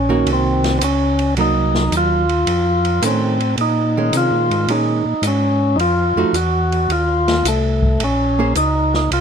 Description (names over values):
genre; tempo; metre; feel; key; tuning
soul jazz organ trio; 109 BPM; 4/4; swing 68% on 8ths; Bb minor; A4 = 440 Hz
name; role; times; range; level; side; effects
percussive tonewheel organ; melody; 0.0-9.2 s; A3 to Gb4; -18 LUFS; equal; slow rotary speaker
mellow tonewheel organ; bass; 0.0-9.2 s; Bb1 to C3; -20 LUFS; left 1 dB; chorus vibrato, slow rotary speaker
archtop guitar, miked and amplified; accompaniment; 0.1-8.5 s; Eb3 to C5; -21 LUFS; right 6 dB; none
open jazz drum kit; drums; 0.3-9.2 s; hi-hat, kick drum, ride cymbal, snare drum; -24 LUFS; right 1 dB; none
room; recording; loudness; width
little or no reverb; close, detailed microphones; -14 LUFS; side -7 dB against mid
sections
0.0-9.2 A section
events
none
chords
0.0 Ebm7; 1.4 Cm7b5; 2.5 F7b13; 3.6 Bbm11; 5.8 F7b9; 8.0 Bbm9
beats
0.27 0.82 | 1.38 1.93 2.48 3.03 | 3.58 4.13 4.68 5.24 | 5.79 6.34 6.89 7.45 | 8.00 8.55 9.11